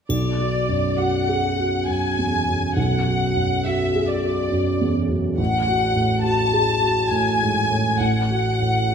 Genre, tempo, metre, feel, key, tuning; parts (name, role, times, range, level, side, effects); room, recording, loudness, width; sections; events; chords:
cinematic, emotional film score for orchestra; 68 BPM; 3/4; rubato; A4 = 443 Hz
warm symphonic violin section; melody; 0.1-8.9 s; D5 to A5; -23 LUFS; left 1 dB
dark baby grand piano; accompaniment; 0.1-8.9 s; A1 to G#4; -20 LUFS; right 1 dB
triangle; percussion; 0.1-1.8 s; -36 LUFS; left 4 dB
wet scoring stage reverb, RT60 1.6 s; -18 LUFS; side -7 dB against mid
0.1-8.9 A section
0.1 Bm; 5.4 F#m/A